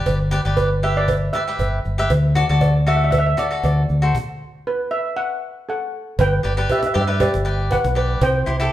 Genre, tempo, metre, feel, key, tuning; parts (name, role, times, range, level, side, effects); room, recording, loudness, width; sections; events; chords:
calypso; 118 BPM; 4/4; swing 53% on 16ths; G major; A4 = 439 Hz
cavaquinho; accompaniment; 0.0-8.7 s; E4 to E5; -24 LUFS; left 2 dB
fingered electric bass; bass; 0.1-8.7 s; G1 to G2; -19 LUFS; equal
cajon; drums; 0.1-8.7 s; -29 LUFS; equal
cowbell; percussion; 0.1-8.3 s; -26 LUFS; right 2 dB
steel pan; melody; 0.6-8.7 s; G4 to G5; -22 LUFS; right 1 dB
wet large studio reverb, RT60 1.3 s; band playing live in one room; -17 LUFS; side -13 dB against mid
0.0-6.2 A section; 6.2-8.7 B section
stop 4.2-6.2
0.0 G; 2.1 D; 6.2 G; 8.2 C